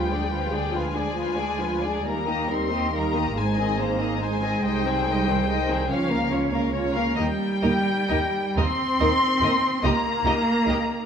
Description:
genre	classical, slow romantic movement for string orchestra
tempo	46 BPM (dotted quarters)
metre	6/8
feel	uneven beats, rubato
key	unclear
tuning	A4 = 441 Hz
part	muted chamber violin section	melody	0.0-11.1 s	F5 to C6	-27 LUFS	left 3 dB	none
part	muted chamber violin section	second line	0.0-10.8 s	F4 to F5	-29 LUFS	left 2 dB	none
part	muted chamber viola section	accompaniment	0.0-10.7 s	Eb3 to F4	-28 LUFS	right 1 dB	none
part	muted chamber cello section	bass	0.0-11.1 s	F3 to C4	-28 LUFS	right 2 dB	none
part	muted chamber double bass section	bass	0.0-10.8 s	Ab1 to Eb2	-29 LUFS	right 2 dB	none
room	wet recital hall reverb, RT60 1.5 s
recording	none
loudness	-21 LUFS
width	side -7 dB against mid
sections	0.0-11.1 A section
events	none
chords	0.0 Ddim7; 2.1 Eb; 3.4 Ab; 4.7 Ab/C; 5.9 Bbm/Db; 7.2 Eb; 9.8 Eb7(no3)

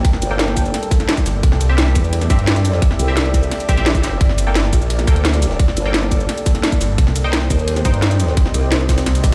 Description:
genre	dark technical drum and bass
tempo	173 BPM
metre	4/4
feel	straight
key	unclear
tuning	A4 = 440 Hz
part	deep dark ambient pad	sustained chords	0.0-9.3 s	G3 to E5	-30 LUFS	equal	chorus, built-in reverb, sidechain pumping
part	band-passed chord stab	stabs	0.0-8.6 s	Bb3 to G5	-30 LUFS	equal	chorus, digital delay
part	formant-sweep wobble bass	bass	0.0-9.1 s	G1 to G2	-20 LUFS	equal	chorus
part	drum and bass drum kit	drums	0.0-9.3 s	cabasa, hi-hat, snare drum	-24 LUFS	equal	none
part	electronic kick drum	drums	0.0-9.3 s	none	-18 LUFS	equal	none
part	jungle sampler-style drum kit	drums	0.0-9.3 s	ride cymbal, snare drum	-32 LUFS	equal	none
part	airy breathy pad	texture	0.0-9.3 s	Bb3 to G5	-30 LUFS	equal	chorus, phaser, sidechain pumping
part	phased detuned saw bass	bass	1.3-1.9, 4.2-4.7, 6.8-9.3 s	G1 to C2	-20 LUFS	equal	phaser, overdrive, sidechain pumping
room	light reverb, digital ambience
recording	played on a big sound system in a bare room, stone room reverb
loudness	-16 LUFS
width	mono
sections	0.0-9.3 A section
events	none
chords	0.0 Gmadd9; 1.4 C; 4.2 Gmadd9; 7.0 Cm

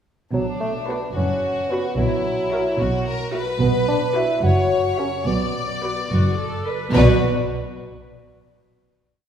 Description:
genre	cinematic, playful, whimsical film cue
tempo	73 BPM (dotted quarters)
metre	6/8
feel	straight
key	B minor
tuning	A4 = 440 Hz
part	clear studio violin section	second line	0.3-7.2 s	D4 to D5	-26 LUFS	left 4 dB	none
part	dark bassoon	accompaniment	0.3-7.2 s	F#3 to F#4	-24 LUFS	right 1 dB	none
part	dark studio cello section	bass	0.3-7.2 s	F#2 to B2	-24 LUFS	right 2 dB	none
part	dark studio double bass section	bass	0.3-7.2 s	F#1 to B1	-23 LUFS	right 1 dB	none
part	dark studio violin section	melody	0.9-7.3 s	D5 to E5	-29 LUFS	left 4 dB	none
part	rich studio viola section	accompaniment	0.9-7.2 s	F#4 to B4	-28 LUFS	right 2 dB	none
room	wet scoring stage reverb, RT60 1.9 s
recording	heard from further back in the room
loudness	-18 LUFS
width	side -8 dB against mid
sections	0.3-6.9 A section; 6.9-8.6 final chord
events	none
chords	0.3 Bm; 2.0 F#7/B; 3.6 Bm; 4.4 F#7b9; 5.3 Bm; 6.9 B5

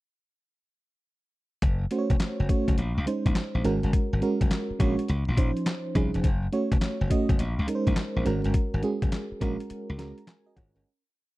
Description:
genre	R&B, new jack swing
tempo	104 BPM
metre	4/4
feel	swing 66% on 16ths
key	unclear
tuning	A4 = 440 Hz
part	glassy slap bass	bass	1.6-10.8 s	F1 to Db2	-27 LUFS	left 1 dB	none
part	boom bap sampler-style drum kit	drums	1.6-10.8 s	handclaps, hi-hat, kick drum, snare drum	-25 LUFS	left 1 dB	none
part	FM electric piano with tremolo	accompaniment	1.9-11.0 s	F3 to Bb5	-28 LUFS	right 2 dB	none
room	little or no reverb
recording	dry, close 1970s-style studio recording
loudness	-24 LUFS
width	side -18 dB against mid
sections	1.6-10.9 verse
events	fade-out 8.5-10.9; FM electric piano fill 9.7-10.9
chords	1.6 Gbm; 2.8 Bbm11; 3.6 Ab9sus4; 5.1 Dbmaj9; 6.2 Gbm; 7.4 Bbm11; 8.3 Ab9sus4

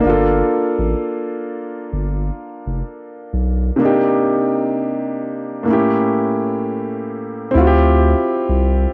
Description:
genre	contemporary R&B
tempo	64 BPM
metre	4/4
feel	swing 58% on 16ths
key	G minor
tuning	A4 = 443 Hz
part	warm concert grand piano	accompaniment	0.0-8.9 s	A2 to A4	-19 LUFS	equal	none
part	saturated sub bass	bass	0.0-8.9 s	F1 to D2	-19 LUFS	equal	none
room	light reverb, studio reverb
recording	home recording on cassette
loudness	-18 LUFS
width	mono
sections	0.0-7.5 A section; 7.5-8.9 B section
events	none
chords	0.0 Gm9; 3.8 Cm9; 5.7 A7b9; 7.5 Dm11

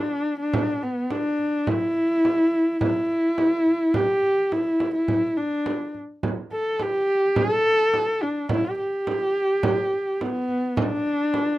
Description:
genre	mongolian traditional, Mongolian folk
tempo	105 BPM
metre	4/4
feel	straight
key	G gong mode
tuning	A4 = 441 Hz
part	warm horsehead fiddle	melody	0.0-11.6 s	B3 to A4	-21 LUFS	equal	none
part	frame drum	percussion	0.5-11.5 s	none	-27 LUFS	right 3 dB	none
room	little or no reverb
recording	dry, close 1970s-style studio recording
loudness	-21 LUFS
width	side -16 dB against mid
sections	0.0-11.6 A section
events	none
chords	none

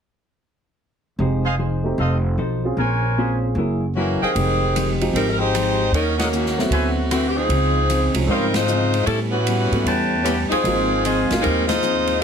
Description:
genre	jazz, big band swing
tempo	152 BPM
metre	4/4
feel	swing 65% on 8ths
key	F minor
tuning	A4 = 440 Hz
part	vintage hollow-body jazz guitar	accompaniment	1.2-12.1 s	Ab2 to C5	-26 LUFS	left 2 dB	none
part	warm upright piano	accompaniment	1.2-11.4 s	F3 to Ab4	-25 LUFS	right 1 dB	none
part	upright bass	bass	1.2-12.2 s	F1 to A2	-22 LUFS	equal	none
part	clear trumpet section	stabs	1.5-11.6 s	Ab4 to A5	-25 LUFS	equal	none
part	warm saxophone section	melody	4.0-12.2 s	Eb3 to C5	-21 LUFS	left 1 dB	none
part	swinging big-band drum kit	drums	4.4-12.2 s	hi-hat, ride cymbal, rim click, snare drum	-29 LUFS	right 1 dB	none
room	moderate club reverb, RT60 0.6 s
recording	heavily compressed radio sound, multiband compression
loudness	-17 LUFS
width	side -7 dB against mid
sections	1.2-4.4 A section; 4.4-12.2 B section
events	band accent 6.1, 8.5, 11.6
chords	1.2 Fm7; 2.0 F7; 2.8 Bbm9; 3.6 Gb9; 4.4 Fm9; 5.9 Ebm7; 6.7 D13; 7.5 Dbmaj9; 9.1 A9; 10.6 Ab6

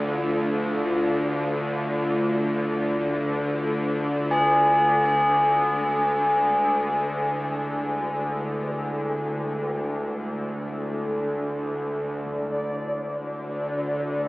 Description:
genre	dark ambient drone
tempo	free time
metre	none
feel	none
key	unclear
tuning	A4 = 435 Hz
part	deep dark ambient pad	sustained chords	0.0-14.3 s	G#3 to F5	-31 LUFS	left 1 dB	chorus, built-in reverb
part	tubular bells	arpeggios	0.0-12.3 s	D4 to G#4	-25 LUFS	equal	analog delay
part	bowed-like drone	drone	0.0-14.3 s	D2 to D3	-26 LUFS	equal	built-in reverb
part	impact	percussion	12.3-12.5 s	none	barely audible	none	none
part	bubbling stepped-filter texture	texture	12.3-14.3 s	D5	-29 LUFS	equal	chorus, built-in reverb
room	wet lush hall reverb, RT60 2.8 s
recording	dreamy mix soaked in reverb, AM radio sound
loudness	-22 LUFS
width	side -21 dB against mid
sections	0.0-12.3 A section; 12.3-14.3 B section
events	fade-out on ambient pad 0.0-12.3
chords	0.0 Dm; 4.3 E; 12.3 Dm

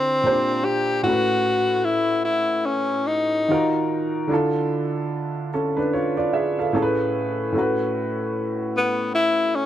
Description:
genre	R&B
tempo	74 BPM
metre	4/4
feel	swing 60% on 16ths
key	A major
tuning	A4 = 442 Hz
part	breathy tenor saxophone	melody	0.0-3.9, 8.8-9.7 s	B3 to G4	-20 LUFS	left 2 dB	none
part	warm upright piano	accompaniment	0.0-9.7 s	A2 to F5	-22 LUFS	right 1 dB	none
room	light reverb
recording	none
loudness	-20 LUFS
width	side -11 dB against mid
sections	0.0-7.5 A section; 7.5-9.7 A section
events	none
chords	0.2 Bb69; 1.1 A69; 3.5 D#madd9; 4.3 Dmadd9; 6.7 Amaj9; 7.5 A69

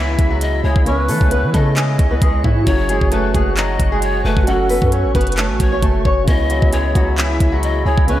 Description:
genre	hip hop, trap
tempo	133 BPM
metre	4/4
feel	half-time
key	C# minor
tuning	A4 = 440 Hz
part	flamenco guitar	melody	0.0-8.2 s	E3 to F#5	-21 LUFS	equal	lush chorus, analog delay
part	breathy pan flute	second line	0.0-8.2 s	A4 to E5	-24 LUFS	left 3 dB	analog delay
part	dark baby grand piano	accompaniment	0.0-8.2 s	C#3 to F#4	-25 LUFS	right 2 dB	none
part	glassy FM pad	sustained chords	0.0-8.2 s	E4 to C#6	-26 LUFS	equal	ensemble chorus, built-in reverb
part	warm 808-style bass	bass	0.0-8.2 s	F#1 to E3	-18 LUFS	equal	none
part	trap drum kit	drums	0.2-8.2 s	handclaps, hi-hat, kick drum	-18 LUFS	equal	none
room	light reverb, small room ambience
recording	none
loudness	-13 LUFS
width	side -13 dB against mid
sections	0.0-8.2 A section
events	none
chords	0.0 C#m7; 2.7 F#m; 6.3 C#m7

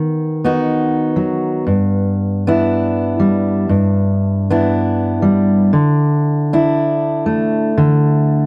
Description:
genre	folk, solo fingerstyle acoustic guitar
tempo	118 BPM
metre	4/4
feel	swing 56% on 8ths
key	unclear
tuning	A4 = 441 Hz
part	fingerpicked steel-string acoustic guitar	solo	0.0-8.5 s	G2 to F#4	-16 LUFS	equal	none
room	light reverb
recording	dry, close 1970s-style studio recording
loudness	-16 LUFS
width	mono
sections	0.0-8.5 A section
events	none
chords	0.0 B/D#; 1.7 G6; 5.7 Dsus2

